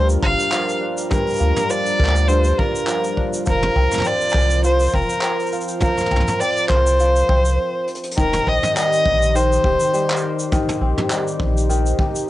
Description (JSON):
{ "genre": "folktronica", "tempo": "102 BPM", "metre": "4/4", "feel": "swing 56% on 16ths", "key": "Eb major", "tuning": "A4 = 440 Hz", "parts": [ { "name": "rich violin", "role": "melody", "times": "0.0-10.2 s", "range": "Bb4 to F5", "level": "-19 LUFS", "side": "equal", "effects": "cassette tape, analog delay" }, { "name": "warbly tape-like pad", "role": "sustained chords", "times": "0.0-12.3 s", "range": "Eb3 to C5", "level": "-26 LUFS", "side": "equal", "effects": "chorus, built-in reverb, cassette tape" }, { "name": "kora", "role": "arpeggios", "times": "0.0-12.3 s", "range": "G2 to Bb4", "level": "-25 LUFS", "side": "left 1 dB", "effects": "cassette tape" }, { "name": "warm sub bass", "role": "bass", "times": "0.0-11.9 s", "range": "Eb1 to D2", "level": "-19 LUFS", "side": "equal", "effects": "none" }, { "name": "vintage brush drum kit", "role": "drums", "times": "0.1-12.3 s", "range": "handclaps, hi-hat, shaker, toms", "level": "-26 LUFS", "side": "equal", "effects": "none" }, { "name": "kick drum", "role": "drums", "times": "0.2-12.1 s", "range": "none", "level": "-22 LUFS", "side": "equal", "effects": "none" } ], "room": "light reverb", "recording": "home recording on cassette, nothing above 10.9 kHz", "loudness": "-16 LUFS", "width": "side -15 dB against mid", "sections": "0.0-8.2 A section; 8.2-12.3 B section", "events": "break 7.6-8.2; drum fill 7.9", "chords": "0.0 Gm7; 3.5 Fsus4; 8.2 Eb6" }